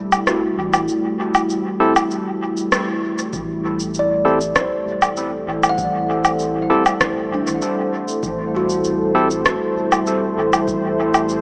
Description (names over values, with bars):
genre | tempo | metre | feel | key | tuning
ambient dub | 98 BPM | 4/4 | straight | A dorian | A4 = 438 Hz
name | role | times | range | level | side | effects
deep dark ambient pad | sustained chords | 0.0-11.4 s | G3 to B5 | -24 LUFS | equal | chorus, built-in reverb
kalimba | arpeggios | 0.0-11.2 s | D4 to F#5 | -27 LUFS | equal | dub echo
round analog bass | bass | 0.0-11.4 s | E1 to A1 | -33 LUFS | equal | none
electronic cabasa, woodblock and rim click | drums | 0.1-11.4 s | none | -22 LUFS | equal | overdrive, dub echo
barky tine electric piano | stabs | 1.8-9.3 s | C4 to A4 | -26 LUFS | equal | dub echo
electronic kick drum | drums | 3.3-10.8 s | none | -35 LUFS | equal | none
room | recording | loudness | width
wet echo chamber reverb, RT60 2.5 s | small speaker sound | -19 LUFS | mono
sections
0.0-3.3 A section; 3.3-11.4 B section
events
band accent 2.7-3.0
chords
0.0 Am7